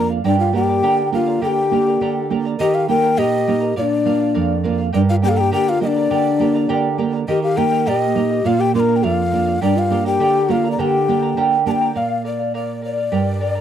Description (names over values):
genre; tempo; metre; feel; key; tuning
andean folk; 103 BPM; 2/4; straight; G minor; A4 = 440 Hz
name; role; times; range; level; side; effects
breathy mellow quena; melody; 0.0-13.6 s; D5 to C6; -22 LUFS; left 4 dB; none
breathy mellow large quena; second line; 0.0-13.6 s; D4 to A5; -20 LUFS; left 6 dB; none
charango; accompaniment; 0.0-13.6 s; G4 to Bb5; -24 LUFS; right 5 dB; none
nylon-string guitar; accompaniment; 0.0-13.6 s; F2 to G4; -20 LUFS; right 6 dB; none
room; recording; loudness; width
moderate small room reverb, RT60 0.5 s; dry, close 1970s-style studio recording; -15 LUFS; side -9 dB against mid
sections
0.0-2.6 A section; 2.6-12.0 A section; 12.0-13.6 B section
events
none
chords
0.2 Gm; 2.6 Eb; 3.8 Bb; 4.9 Gm; 7.3 Eb; 8.5 Bb; 9.6 Gm; 12.0 Bb